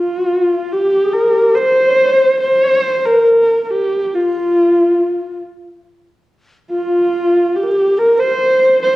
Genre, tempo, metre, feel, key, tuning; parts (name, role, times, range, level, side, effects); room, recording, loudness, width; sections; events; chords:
mongolian traditional, Mongolian folk; 70 BPM; 4/4; straight; A4 = 440 Hz
dark horsehead fiddle; melody; 0.0-9.0 s; F4 to C5; -13 LUFS; right 1 dB
breathy mellow low xiao; second line; 0.0-9.0 s; F4 to C5; -16 LUFS; left 2 dB
wet recital hall reverb, RT60 1.2 s; worn, warbling old tape, cassette tape, warbly pitch drift; -11 LUFS; side -17 dB against mid
0.0-9.0 A section